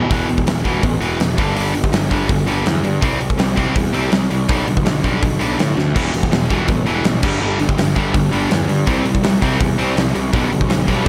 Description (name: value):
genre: punk rock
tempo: 164 BPM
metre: 4/4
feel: straight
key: unclear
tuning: A4 = 437 Hz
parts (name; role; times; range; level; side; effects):
- distorted electric guitar; riff; 0.0-11.1 s; E2 to C4; -22 LUFS; equal; overdrive
- sludgy distorted guitar; riff; 0.0-0.1, 6.0-11.1 s; G2 to G4; -26 LUFS; equal; none
- fuzz picked electric bass; bass; 0.0-11.1 s; E1 to A2; -23 LUFS; equal; overdrive
- big rock drum kit; drums; 0.1-11.1 s; crash cymbal, hi-hat, kick drum, snare drum; -22 LUFS; equal; none
room: light reverb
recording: none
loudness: -17 LUFS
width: mono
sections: 0.1-11.1 A section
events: drum fill 5.8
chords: 0.1 E5; 1.4 G5; 3.0 C5; 4.5 G/B; 5.9 Em; 7.2 G5; 8.9 C5; 10.3 G/B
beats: | 0.10 0.47 0.83 1.20 | 1.56 1.93 2.29 2.66 | 3.02 3.39 3.76 4.12 | 4.49 4.85 5.22 5.58 | 5.95 6.31 6.68 7.04 | 7.41 7.77 8.14 8.50 | 8.87 9.23 9.60 9.96 | 10.33 10.69 11.06